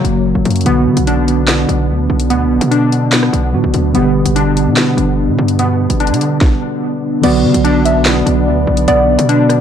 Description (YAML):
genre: hip hop, drill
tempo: 146 BPM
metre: 4/4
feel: half-time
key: B harmonic minor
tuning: A4 = 440 Hz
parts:
  - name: mellow tine electric piano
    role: accompaniment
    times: 0.0-9.6 s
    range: C#3 to G4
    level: -17 LUFS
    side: right 1 dB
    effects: medium stereo tremolo
  - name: warbly lo-fi synth keys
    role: arpeggios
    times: 0.0-9.6 s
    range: F#3 to D4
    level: -15 LUFS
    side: left 1 dB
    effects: chorus, ping-pong delay
  - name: hard-hitting 808-style bass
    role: bass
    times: 0.0-9.6 s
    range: F#1 to D3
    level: -16 LUFS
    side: equal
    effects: none
  - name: drill drum kit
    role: drums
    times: 0.0-9.6 s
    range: crash cymbal, handclaps, hi-hat, kick drum, rim click, snare drum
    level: -17 LUFS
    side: equal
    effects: vintage 12-bit sampler grit
  - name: soft round pluck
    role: second line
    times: 7.2-9.6 s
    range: D5 to E5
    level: -18 LUFS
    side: right 2 dB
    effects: chorus, ping-pong delay
  - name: mellow French horn section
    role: sustained chords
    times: 7.2-9.6 s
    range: B3 to D5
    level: -20 LUFS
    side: left 3 dB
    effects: none
room: digital ambience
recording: dark, warm production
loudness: -10 LUFS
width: side -8 dB against mid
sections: 0.0-7.2 A section; 7.2-9.6 B section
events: none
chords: 0.0 F#; 0.7 Bm; 3.9 G; 7.2 Bm